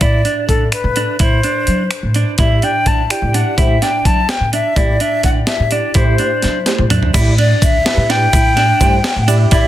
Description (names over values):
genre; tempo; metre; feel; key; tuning
progressive instrumental, band music in an uneven meter; 252 BPM (eighths); 5/8; straight; A dorian; A4 = 441 Hz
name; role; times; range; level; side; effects
jazz flute; melody; 0.0-9.7 s; A4 to A5; -17 LUFS; left 2 dB; plate reverb, ping-pong delay
clean electric guitar; arpeggios; 0.0-9.7 s; D4 to E4; -21 LUFS; right 6 dB; plate reverb, ping-pong delay
upright bass; bass; 0.0-9.7 s; D2 to F#3; -16 LUFS; equal; none
breakbeat sampler-style drum kit; drums; 0.0-9.6 s; crash cymbal, finger snaps, hi-hat, kick drum, ride cymbal, snare drum, toms; -16 LUFS; equal; none
tine electric piano; accompaniment; 2.4-9.7 s; A3 to F#5; -23 LUFS; right 2 dB; ensemble chorus, plate reverb
tube shaker; percussion; 7.1-9.7 s; none; -28 LUFS; left 7 dB; none
room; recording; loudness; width
moderate studio reverb, RT60 0.6 s; dense, heavily limited modern master; -12 LUFS; side -13 dB against mid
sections
0.0-7.2 A section; 7.2-9.7 B section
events
drum fill 6.7-7.2; flute solo 7.2-9.7; tine electric piano fill 8.8-9.5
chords
0.0 E5/A; 1.2 Am; 2.4 Em7/A; 3.6 Am7; 4.8 Em7/A; 6.0 Am7; 7.2 Em7; 8.3 Am7